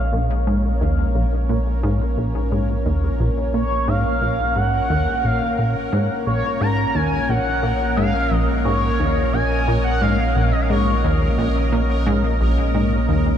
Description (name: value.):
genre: ambient, sequencer-driven space music.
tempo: 88 BPM.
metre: 4/4.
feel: straight.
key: Bb minor.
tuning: A4 = 440 Hz.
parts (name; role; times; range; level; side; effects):
expressive synth lead; melody; 0.0-11.2 s; Db5 to Bb5; -24 LUFS; equal; analog chorus, ping-pong delay.
lush unison pad; sustained chords; 0.0-13.4 s; Bb2 to Eb5; -25 LUFS; equal; chorus.
warm sub bass; bass; 0.0-13.4 s; Bb1; -22 LUFS; equal; none.
bubbling stepped-filter texture; texture; 0.0-13.4 s; Bb4; -34 LUFS; right 4 dB; chorus, built-in reverb.
plucky analog bass; riff; 0.1-13.3 s; Bb1 to Bb2; -22 LUFS; equal; analog chorus, ping-pong delay.
room: moderate huge ambient reverb, RT60 7.4 s.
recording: none.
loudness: -17 LUFS.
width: side -9 dB against mid.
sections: 0.0-13.4 A section.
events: fade-in on analog synth pad 0.0-13.4; fade-in on synth texture 0.0-13.4.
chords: 0.0 Bbm.